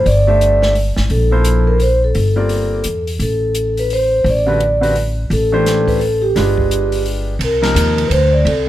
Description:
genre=modal jazz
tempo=171 BPM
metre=3/4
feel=swing 63% on 8ths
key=G dorian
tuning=A4 = 440 Hz
part: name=vibraphone with soft mallets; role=melody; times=0.0-8.7 s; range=G4 to D5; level=-16 LUFS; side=equal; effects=none
part: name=warm concert grand piano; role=accompaniment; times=0.0-8.1 s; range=C3 to E5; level=-20 LUFS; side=equal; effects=none
part: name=upright bass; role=bass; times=0.0-8.7 s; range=G1 to E2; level=-16 LUFS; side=equal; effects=none
part: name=open jazz drum kit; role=drums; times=0.1-8.6 s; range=hi-hat, kick drum, ride cymbal, snare drum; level=-25 LUFS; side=right 1 dB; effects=none
room=light reverb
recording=none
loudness=-13 LUFS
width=side -13 dB against mid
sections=0.0-7.4 A section; 7.4-8.7 B section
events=none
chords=0.0 Gm11; 3.2 Am11; 6.3 G7b9; 7.4 Cm9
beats=| 0.05 0.40 0.75 | 1.10 1.45 1.80 | 2.15 2.50 2.85 | 3.20 3.55 3.90 | 4.25 4.60 4.95 | 5.30 5.65 6.00 | 6.35 6.70 7.05 | 7.40 7.75 8.10 | 8.45

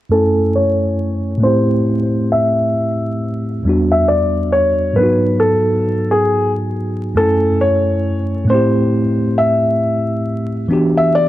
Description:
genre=lo-fi hip hop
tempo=68 BPM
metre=4/4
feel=swing 61% on 16ths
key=unclear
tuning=A4 = 439 Hz
part: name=felt-muted upright piano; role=melody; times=0.1-11.3 s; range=G#4 to E5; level=-16 LUFS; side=left 1 dB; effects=low-pass filter
part: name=tine electric piano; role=accompaniment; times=0.1-11.3 s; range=E2 to G#5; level=-16 LUFS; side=equal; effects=medium stereo tremolo, cassette tape, low-pass filter
room=moderate plate reverb, RT60 2.6 s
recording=vinyl crackle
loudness=-13 LUFS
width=side -14 dB against mid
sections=0.1-11.3 A section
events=filter sweep 0.1-11.3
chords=0.1 F#m9; 1.4 Am7; 3.6 Em9; 4.9 G#m7; 7.2 F#m9; 8.5 Am7; 10.7 Em9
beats=| 0.10 0.98 1.86 2.74 | 3.62 4.51 5.39 6.27 | 7.15 8.04 8.92 9.80 | 10.68

